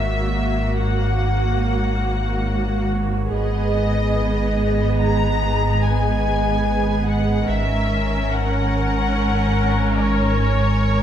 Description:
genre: cinematic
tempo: free time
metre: none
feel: none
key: unclear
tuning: A4 = 440 Hz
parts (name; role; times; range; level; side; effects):
- clear studio violin section; melody; 0.0-11.0 s; C#5 to A#5; -26 LUFS; left 3 dB; none
- clear studio viola section; accompaniment; 0.0-11.0 s; A#3 to A#4; -24 LUFS; right 2 dB; none
- glass harmonica; sustained chords; 0.0-11.0 s; A#4 to A#5; -29 LUFS; right 2 dB; none
- dark studio double bass section; bass; 0.0-11.0 s; G#1; -25 LUFS; right 1 dB; none
- warm studio cello section; bass; 0.0-11.0 s; G#2; -24 LUFS; right 1 dB; none
- warm sub bass; drone; 0.0-11.0 s; G#1; -24 LUFS; left 1 dB; none
room: wet scoring stage reverb, RT60 1.7 s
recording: minimal, uncompressed stereo recording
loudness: -17 LUFS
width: side -10 dB against mid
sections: 0.0-11.0 A section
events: none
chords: 0.0 F#/G#; 3.3 G#m; 7.5 F#/G#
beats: free time

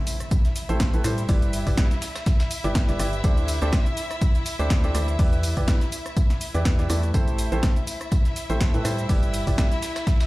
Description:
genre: piano house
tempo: 123 BPM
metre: 4/4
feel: swing 55% on 16ths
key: A minor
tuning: A4 = 440 Hz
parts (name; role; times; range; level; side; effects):
- dark studio violin section; sustained chords; 0.0-10.3 s; E4 to E5; -33 LUFS; left 1 dB; sidechain pumping
- impact; sound effects; 0.0-1.3 s; none; -32 LUFS; equal; none
- dusty soul sampler-style drum kit; drums; 0.1-10.3 s; hi-hat, snare drum, tambourine; -39 LUFS; equal; none
- punchy analog drum machine; drums; 0.1-10.3 s; hi-hat, rim click, shaker, snare drum; -31 LUFS; equal; none
- electronic kick drum; drums; 0.3-10.2 s; none; -21 LUFS; equal; none
- warm upright piano; riff; 0.7-9.6 s; E3 to D5; -30 LUFS; right 2 dB; sidechain pumping, dub echo
- organ-like FM bass; bass; 0.7-9.6 s; G1 to A2; -25 LUFS; equal; sidechain pumping
room: little or no reverb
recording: played on a big sound system in a bare room, large studio reverb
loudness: -20 LUFS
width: side -19 dB against mid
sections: 0.0-10.3 A section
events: impact 0.0-1.3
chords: 0.0 Am7; 1.3 G6; 3.2 D7sus4; 5.2 Em7; 7.1 Am7; 9.1 G6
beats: 0.31 0.80 | 1.29 1.78 2.26 2.75 | 3.24 3.73 4.21 4.70 | 5.19 5.68 6.17 6.65 | 7.14 7.63 8.12 8.61 | 9.09 9.58 10.07

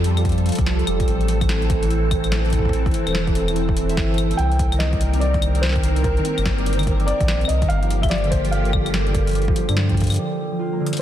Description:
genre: IDM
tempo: 145 BPM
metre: 4/4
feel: swing 62% on 16ths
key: unclear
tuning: A4 = 440 Hz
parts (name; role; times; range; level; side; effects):
- soft string machine; sustained chords; 0.0-10.2 s; Eb3 to Bb4; -27 LUFS; equal; phaser, ensemble chorus, vintage 12-bit sampler grit, sidechain pumping
- concert harp; arpeggios; 0.0-11.0 s; D3 to E5; -25 LUFS; right 2 dB; vintage 12-bit sampler grit, low-pass filter, digital delay
- warm sub bass; bass; 0.0-10.2 s; E1 to G2; -21 LUFS; equal; tube saturation
- electro analog drum machine; drums; 0.0-11.0 s; claves, hi-hat, snare drum; -28 LUFS; left 1 dB; tape echo
- electronic kick drum; drums; 0.2-10.1 s; none; -23 LUFS; equal; none
- felt-muted upright piano; melody; 4.4-11.0 s; Bb4 to G5; -26 LUFS; left 1 dB; tape echo
room: moderate lush hall reverb, RT60 1.8 s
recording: dense, heavily limited modern master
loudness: -17 LUFS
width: side -11 dB against mid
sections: 0.0-11.0 A section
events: break 10.2-11.0; drum fill 10.8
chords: 0.0 Fadd9; 1.1 Am; 4.4 Cm7; 7.7 Gm7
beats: 0.25 0.66 | 1.08 1.49 1.91 2.32 | 2.73 3.15 3.56 3.97 | 4.39 4.80 5.21 5.63 | 6.04 6.46 6.87 7.28 | 7.70 8.11 8.53 8.94 | 9.35 9.77 10.18 10.59 | 11.01

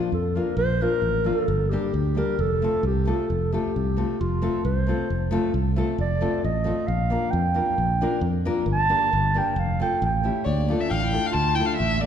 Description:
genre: balkan folk, Balkan wedding band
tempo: 134 BPM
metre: 2/4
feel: swing 53% on 16ths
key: F major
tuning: A4 = 440 Hz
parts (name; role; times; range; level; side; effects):
- nylon-string guitar; accompaniment; 0.0-12.1 s; F3 to Bb4; -28 LUFS; left 3 dB; none
- mellow clarinet; second line; 0.1-12.1 s; A3 to A5; -26 LUFS; right 2 dB; none
- fingered electric bass; bass; 0.1-12.1 s; F1 to F2; -25 LUFS; right 1 dB; none
- warm violin; melody; 10.4-12.1 s; C#5 to A5; -24 LUFS; left 5 dB; none
room: moderate scoring stage reverb, RT60 2.1 s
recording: recorded in a church or concert hall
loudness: -21 LUFS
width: side -8 dB against mid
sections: 0.0-10.5 A section; 10.5-12.1 B section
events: clarinet solo 0.0-10.5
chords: 0.0 Bb; 1.5 Gm; 2.4 F; 6.9 Bb; 8.7 Gm; 9.6 F; 10.0 A7; 10.5 Dm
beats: 0.13 | 0.58 1.04 | 1.49 1.94 | 2.39 2.85 | 3.30 3.75 | 4.20 4.65 | 5.10 5.55 | 6.00 6.44 | 6.89 7.34 | 7.79 8.23 | 8.68 9.12 | 9.57 10.01 | 10.46 10.90 | 11.35 11.79

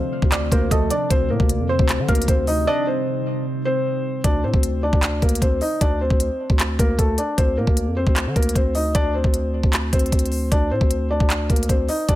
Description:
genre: hip hop, trap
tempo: 153 BPM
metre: 4/4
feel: half-time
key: D phrygian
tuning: A4 = 441 Hz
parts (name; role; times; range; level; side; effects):
- felt-muted upright piano; melody; 0.0-12.2 s; A3 to Eb5; -23 LUFS; left 1 dB; none
- soft round pluck; second line; 0.0-4.2 s; C5 to F5; -30 LUFS; right 4 dB; chorus, tape echo
- deep dark ambient pad; sustained chords; 0.0-4.2 s; C3 to Eb4; -28 LUFS; right 2 dB; chorus, built-in reverb
- growling 808-style bass; bass; 0.2-12.2 s; D2 to D3; -23 LUFS; equal; none
- trap drum kit; drums; 0.2-12.2 s; handclaps, hi-hat, kick drum; -20 LUFS; equal; none
room: digital ambience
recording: none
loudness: -18 LUFS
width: side -15 dB against mid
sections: 0.0-4.2 A section; 4.2-12.2 B section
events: break 2.7-4.2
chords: 0.0 Dm7; 1.1 Cmadd9; 4.2 D5; 7.4 Csus2/D; 10.5 D5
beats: 0.32 0.71 | 1.10 1.50 1.89 2.28 | 2.67 3.07 3.46 3.85 | 4.24 4.63 5.03 5.42 | 5.81 6.20 6.59 6.99 | 7.38 7.77 8.16 8.56 | 8.95 9.34 9.73 10.12 | 10.52 10.91 11.30 11.69 | 12.09

